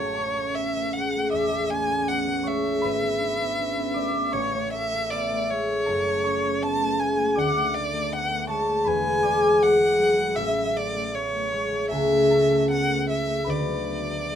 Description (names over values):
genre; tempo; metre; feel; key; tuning
classical, romantic duo for violin and harp; 79 BPM; 4/4; rubato; A major from 5.9 s; A4 = 443 Hz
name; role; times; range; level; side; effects
warm violin; melody; 0.0-14.4 s; C#5 to A5; -26 LUFS; right 1 dB; none
concert harp; accompaniment; 0.0-14.4 s; E1 to E6; -23 LUFS; left 1 dB; none
room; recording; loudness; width
moderate studio reverb, RT60 0.6 s; minimal, uncompressed stereo recording; -21 LUFS; side -9 dB against mid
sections
0.0-14.4 A section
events
none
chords
0.0 A; 2.8 E7/G#; 4.3 A; 5.9 F#m; 7.4 Bm7/D; 8.9 E7; 10.4 A; 11.9 A/C#; 13.5 Bm/D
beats
0.56 1.32 2.08 | 2.83 3.58 4.34 5.11 | 5.87 6.63 7.37 8.12 | 8.87 9.62 10.38 11.15 | 11.92 12.71 13.49 14.31